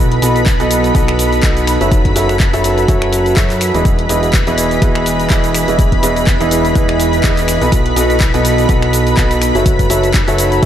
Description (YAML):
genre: piano house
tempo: 124 BPM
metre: 4/4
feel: swing 56% on 16ths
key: E major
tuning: A4 = 436 Hz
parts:
  - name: analog string pad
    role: sustained chords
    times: 0.0-10.7 s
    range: B4 to B5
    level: -20 LUFS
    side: left 1 dB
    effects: ensemble chorus, sidechain pumping
  - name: clear baby grand piano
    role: riff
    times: 0.0-10.7 s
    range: E3 to E5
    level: -16 LUFS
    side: right 1 dB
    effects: sidechain pumping, tape echo
  - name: fat analog bass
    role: bass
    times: 0.0-10.7 s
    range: E1 to F#2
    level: -18 LUFS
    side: equal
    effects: tube saturation, sidechain pumping
  - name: deep dark ambient pad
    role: texture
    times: 0.0-10.7 s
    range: D#4 to A5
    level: -22 LUFS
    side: right 1 dB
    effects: chorus, built-in reverb, sidechain pumping
  - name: punchy analog drum machine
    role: drums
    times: 0.1-10.7 s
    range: cabasa, finger snaps, handclaps, hi-hat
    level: -21 LUFS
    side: equal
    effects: none
  - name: electronic kick drum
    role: drums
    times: 0.5-10.7 s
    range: none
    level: -13 LUFS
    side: equal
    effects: none
room: light reverb, digital ambience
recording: none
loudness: -10 LUFS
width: side -10 dB against mid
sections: 0.0-10.7 A section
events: none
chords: 0.0 B7; 1.9 F#m7; 3.9 Emaj7; 7.7 B7; 9.7 F#m7